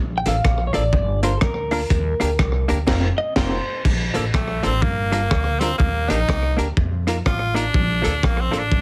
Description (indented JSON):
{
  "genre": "ska",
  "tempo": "123 BPM",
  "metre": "4/4",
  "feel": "swing 62% on 8ths",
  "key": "Bb major",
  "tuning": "A4 = 440 Hz",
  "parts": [
    { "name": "upright bass", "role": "bass", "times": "0.0-8.8 s", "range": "F1 to F2", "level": "-25 LUFS", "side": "equal", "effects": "none" },
    { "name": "clean electric guitar", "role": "melody", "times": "0.2-3.8 s", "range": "A4 to G5", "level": "-27 LUFS", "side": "equal", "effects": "lush chorus" },
    { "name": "hollow-body jazz guitar", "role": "accompaniment", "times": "0.3-8.6 s", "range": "F3 to Bb4", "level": "-26 LUFS", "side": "equal", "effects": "none" },
    { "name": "crunchy breakbeat drum kit", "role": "drums", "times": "0.3-8.8 s", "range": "crash cymbal, hi-hat, kick drum, rim click, snare drum", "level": "-25 LUFS", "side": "equal", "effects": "slapback echo" },
    { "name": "raspy tenor saxophone", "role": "melody", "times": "4.3-8.8 s", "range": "A3 to F4", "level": "-26 LUFS", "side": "equal", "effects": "none" }
  ],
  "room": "light reverb",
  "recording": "heavily compressed radio sound",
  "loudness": "-20 LUFS",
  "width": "mono",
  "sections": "0.0-3.9 A section; 3.9-8.8 A section",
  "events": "clean electric guitar solo 0.0-3.9; band accent 2.9-3.9; tenor saxophone solo 3.9-8.8",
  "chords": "0.0 Bbmaj7; 0.9 Gm7; 1.9 Ebmaj7; 2.9 F7sus4; 3.9 Bbmaj7; 4.8 Gm7; 5.8 Ebmaj7; 6.8 F7sus4; 7.7 Bbmaj7"
}